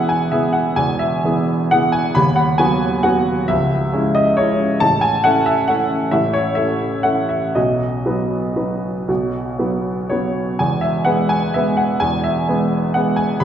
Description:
classical, piano waltz; 115-142 BPM; 3/4; rubato; E major; A4 = 441 Hz
clear upright piano; solo; 0.0-13.4 s; C#1 to B5; -15 LUFS; equal
wet recital hall reverb, RT60 1.6 s; heard from further back in the room; -15 LUFS; side -9 dB against mid
0.0-13.4 A section
0.0 E; 2.2 B/D#; 3.5 C#m; 4.8 A; 7.6 B; 10.6 E

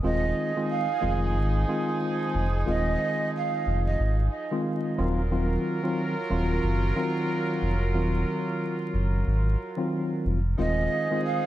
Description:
hip hop; 91 BPM; 4/4; swing 59% on 16ths; A4 = 440 Hz
breathy mellow jazz flute; melody; 0.0-4.2, 10.6-11.5 s; Eb5 to Ab5; -30 LUFS; right 5 dB; high-pass filter, low-pass filter, dub echo
mellow tine electric piano; accompaniment; 0.0-11.4 s; Eb3 to F4; -28 LUFS; left 1 dB; medium stereo tremolo, cassette tape, high-pass filter, low-pass filter
warm horn section; stabs; 0.0-11.5 s; F3 to Bb4; -32 LUFS; right 2 dB; high-pass filter, low-pass filter, dub echo
sub bass with octave; bass; 0.0-10.9 s; Eb1 to Ab1; -25 LUFS; equal
dark analog pad; sustained chords; 10.6-11.5 s; C5 to Eb6; -41 LUFS; equal; chorus, high-pass filter, low-pass filter
small room ambience; echo-heavy mix, vinyl crackle; -24 LUFS; side -14 dB against mid
0.0-11.5 A section
0.0 Fm7/Eb; 5.0 Ebm69; 10.6 Fm7/Eb

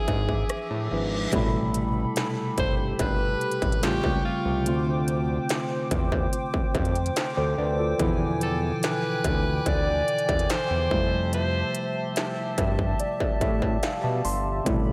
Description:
contemporary R&B; 72 BPM; 4/4; straight; A minor; A4 = 440 Hz
breathy alto saxophone; melody; 0.0-12.1 s; E#4 to D5; -32 LUFS; equal; delay
tine electric piano; accompaniment; 0.0-14.9 s; B2 to C6; -31 LUFS; equal
hollow soft pad; sustained chords; 0.0-14.9 s; G4 to D6; -35 LUFS; equal; chorus
reverse cymbal; sound effects; 0.7-1.3 s; -41 LUFS; equal
fat analog bass; bass; 0.1-14.9 s; G1 to B2; -30 LUFS; equal
industrial drum kit; drums; 0.1-14.9 s; hi-hat, kick drum, rim click, snare drum; -30 LUFS; equal; distortion, overdrive
moderate lush hall reverb, RT60 2.0 s; dreamy mix soaked in reverb; -26 LUFS; mono
0.0-1.3 A section; 1.3-14.9 B section
reverse cymbal 0.7-1.3; tine electric piano fill 12.2-14.7
0.0 E7b9; 1.3 Am9; 3.8 A7alt; 4.7 Dm7; 8.0 E7b9; 10.9 Fmaj9

